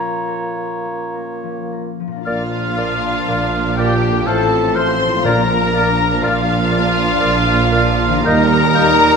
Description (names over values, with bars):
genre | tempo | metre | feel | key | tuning
classical | 50-63 BPM | 3/4 | rubato | Bb major | A4 = 439 Hz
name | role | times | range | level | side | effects
hollow concert flute | second line | 0.0-8.9 s | Bb5 to G6 | -26 LUFS | left 1 dB | none
warm clarinet | second line | 0.0-8.9 s | F4 to Eb5 | -26 LUFS | left 3 dB | none
warm oboe | second line | 0.0-9.2 s | F4 to Db5 | -24 LUFS | equal | none
mellow bassoon | accompaniment | 0.0-8.9 s | A3 to Bb3 | -27 LUFS | right 3 dB | none
concert harp | arpeggios | 0.0-9.2 s | A2 to Bb4 | -26 LUFS | left 9 dB | none
warm studio violin section | melody | 2.3-9.2 s | F5 to C6 | -21 LUFS | left 4 dB | none
rich chamber violin section | second line | 2.3-9.2 s | F4 to C5 | -26 LUFS | left 2 dB | none
bright trombone section | sustained chords | 2.3-9.2 s | A2 to G3 | -25 LUFS | right 2 dB | none
mellow French horn section | sustained chords | 2.3-9.2 s | Bb3 to F4 | -26 LUFS | equal | none
clear trumpet section | stabs | 2.3-9.2 s | F4 to C5 | -21 LUFS | equal | none
dark tuba | bass | 2.3-9.1 s | A1 to Eb2 | -24 LUFS | right 5 dB | none
rich symphonic cello section | bass | 2.3-9.1 s | Eb2 to Bb2 | -24 LUFS | right 3 dB | none
rich symphonic double bass section | bass | 2.3-9.1 s | A1 to Eb2 | -24 LUFS | right 2 dB | none
rich symphonic viola section | accompaniment | 2.8-9.2 s | F3 to Eb4 | -24 LUFS | right 2 dB | none
timpani | percussion | 5.2-6.7 s | Bb2 | -26 LUFS | left 2 dB | none
room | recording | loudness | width
moderate scoring stage reverb, RT60 1.8 s | minimal, uncompressed stereo recording | -14 LUFS | side -5 dB against mid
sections
0.0-2.3 A section; 2.3-9.2 B section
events
none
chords
0.0 Bbm; 2.3 Bb; 4.3 F/A; 5.3 Bb; 8.3 Eb